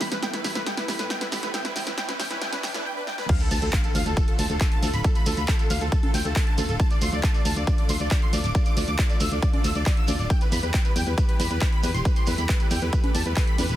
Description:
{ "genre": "uplifting trance", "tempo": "137 BPM", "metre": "4/4", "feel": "straight", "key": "D dorian", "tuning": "A4 = 441 Hz", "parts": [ { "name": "dense compressed supersaw", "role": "melody", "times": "0.0-13.8 s", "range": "A4 to E6", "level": "-31 LUFS", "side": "equal", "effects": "sidechain pumping, tape echo" }, { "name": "lush unison pad", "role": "sustained chords", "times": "0.0-13.8 s", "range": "C3 to G4", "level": "-34 LUFS", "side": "left 1 dB", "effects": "chorus, sidechain pumping" }, { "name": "wide unison pluck", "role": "arpeggios", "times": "0.0-2.8 s", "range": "B3 to B4", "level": "-38 LUFS", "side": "right 3 dB", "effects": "sidechain pumping, tape echo" }, { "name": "solid FM bass", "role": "bass", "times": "0.0-13.8 s", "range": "D1 to A2", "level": "-26 LUFS", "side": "equal", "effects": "sidechain pumping" }, { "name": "punchy analog drum machine", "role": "drums", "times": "0.0-13.8 s", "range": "congas, crash cymbal, handclaps, hi-hat, snare drum", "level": "-31 LUFS", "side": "equal", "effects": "overdrive" }, { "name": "shekere", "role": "percussion", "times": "0.0-13.8 s", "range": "none", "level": "-36 LUFS", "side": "right 4 dB", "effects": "none" }, { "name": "riser and sub drop", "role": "sound effects", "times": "0.2-5.0 s", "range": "none", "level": "-34 LUFS", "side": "equal", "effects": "none" }, { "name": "electronic kick drum", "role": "drums", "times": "3.3-13.5 s", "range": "none", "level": "-22 LUFS", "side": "equal", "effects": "overdrive" } ], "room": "digital ambience", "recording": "dense, heavily limited modern master, high-pass filter", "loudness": "-21 LUFS", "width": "side -13 dB against mid", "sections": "0.0-3.3 A section; 3.3-13.8 B section", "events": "build-up 0.0-3.3; drum fill 0.0-2.9, 3.1; riser 0.2-2.9; drop 3.3-13.8; impact 3.3-5.0", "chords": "0.0 Am; 3.3 Dm; 10.3 Em", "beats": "0.23 0.67 1.10 | 1.54 1.98 2.42 2.85 | 3.29 3.73 4.17 4.61 | 5.04 5.48 5.92 6.36 | 6.80 7.24 7.67 8.11 | 8.55 8.99 9.43 9.86 | 10.30 10.74 11.18 11.61 | 12.05 12.49 12.93 13.37" }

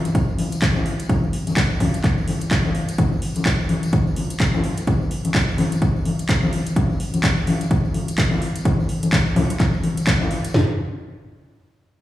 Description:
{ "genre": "house", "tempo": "127 BPM", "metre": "4/4", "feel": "swing 59% on 16ths", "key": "none", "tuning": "none", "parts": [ { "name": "house drum kit", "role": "drums", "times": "0.1-10.7 s", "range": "kick drum, snare drum, toms", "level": "-20 LUFS", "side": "equal", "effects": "overdrive" }, { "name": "house drum kit", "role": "drums", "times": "0.1-10.5 s", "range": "handclaps, hi-hat", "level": "-27 LUFS", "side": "equal", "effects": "overdrive" }, { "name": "tambourine and congas", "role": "percussion", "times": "0.1-10.5 s", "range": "none", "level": "-23 LUFS", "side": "left 2 dB", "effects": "none" } ], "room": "light reverb", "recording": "played on a big sound system in a bare room, large studio reverb, studio ambience", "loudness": "-18 LUFS", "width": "side -14 dB against mid", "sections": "0.0-10.5 A section; 10.5-12.0 B section", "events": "none", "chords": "none", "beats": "0.15 0.62 | 1.09 1.57 2.04 2.51 | 2.98 3.46 3.93 4.40 | 4.87 5.35 5.82 6.29 | 6.76 7.24 7.71 8.18 | 8.65 9.13 9.60 10.07 | 10.54" }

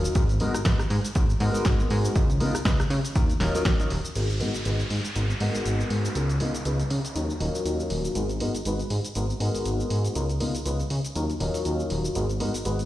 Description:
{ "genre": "filtered disco house", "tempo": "120 BPM", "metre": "4/4", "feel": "swing 56% on 16ths", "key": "G# dorian", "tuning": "A4 = 440 Hz", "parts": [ { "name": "clear concert grand piano", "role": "accompaniment", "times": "0.0-12.8 s", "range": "F#3 to B4", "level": "-30 LUFS", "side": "left 1 dB", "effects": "phaser, sidechain pumping, low-pass filter" }, { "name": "plucky analog bass", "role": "bass", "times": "0.0-12.8 s", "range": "D#1 to C#3", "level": "-26 LUFS", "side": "equal", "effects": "tube saturation, sidechain pumping, low-pass filter" }, { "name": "punchy analog drum machine", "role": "drums", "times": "0.0-12.9 s", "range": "cabasa, crash cymbal, hi-hat, rim click, snare drum", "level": "-33 LUFS", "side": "equal", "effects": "sidechain pumping on hats, small room ambience, sidechain pumping on perc, sidechain pumping on cymbals" }, { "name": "electronic kick drum", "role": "drums", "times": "0.2-3.8 s", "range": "none", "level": "-24 LUFS", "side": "equal", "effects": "small room ambience" }, { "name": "downlifter", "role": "sound effects", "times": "4.2-8.2 s", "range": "none", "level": "-36 LUFS", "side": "equal", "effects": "none" } ], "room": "digital ambience", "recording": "played on a big sound system in a bare room, stone room reverb", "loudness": "-23 LUFS", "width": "side -14 dB against mid", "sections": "0.0-4.2 A section; 4.2-12.9 B section", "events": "filter sweep 0.0-4.2, 4.2-12.9", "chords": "0.2 G#m9; 2.2 C#9; 3.2 D#m9; 4.2 G#m9; 6.2 C#9; 7.2 D#m9; 8.2 G#m9; 10.2 C#9; 11.2 D#m9; 12.2 G#m9", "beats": "| 0.15 0.65 1.15 1.65 | 2.15 2.65 3.15 3.65 | 4.15 4.65 5.15 5.65 | 6.15 6.65 7.15 7.65 | 8.15 8.65 9.15 9.65 | 10.15 10.65 11.15 11.65 | 12.15 12.65" }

